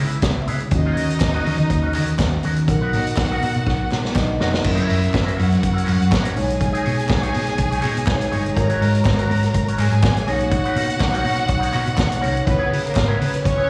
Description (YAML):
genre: disco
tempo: 122 BPM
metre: 4/4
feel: straight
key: unclear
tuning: A4 = 439 Hz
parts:
  - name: warm studio violin section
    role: second line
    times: 0.0-13.7 s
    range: A#3 to A#5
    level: -28 LUFS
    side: equal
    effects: plate reverb, slapback echo
  - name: electric guitar with an envelope filter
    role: accompaniment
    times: 0.0-13.7 s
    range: C#4 to D#5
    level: -31 LUFS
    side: equal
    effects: plate reverb, slapback echo
  - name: mellow tine electric piano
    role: accompaniment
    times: 0.0-13.7 s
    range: B2 to F#5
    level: -27 LUFS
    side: equal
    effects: plate reverb, slapback echo
  - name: hollow-body short-scale fingered electric bass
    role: bass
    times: 0.0-13.6 s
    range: E#1 to D#3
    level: -24 LUFS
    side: equal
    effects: none
  - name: vintage drum kit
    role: drums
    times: 0.1-13.6 s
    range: crash cymbal, hi-hat, kick drum, snare drum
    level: -25 LUFS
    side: equal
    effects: none
  - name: group handclap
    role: percussion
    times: 0.2-13.1 s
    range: none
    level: -38 LUFS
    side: equal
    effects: none
room: light reverb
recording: live gig heard through the venue's PA, recital hall reverb, studio ambience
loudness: -19 LUFS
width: mono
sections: 0.0-4.6 A section; 4.6-12.5 B section; 12.5-13.7 C section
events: drum fill 3.7-4.6; tine electric piano fill 3.7-4.6, 11.7-12.5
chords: 0.0 C#m7; 0.7 D#m7; 2.7 Bmaj7; 4.6 F#7; 6.4 B69; 8.6 G#9sus4; 10.3 Bmaj9; 12.5 C#m7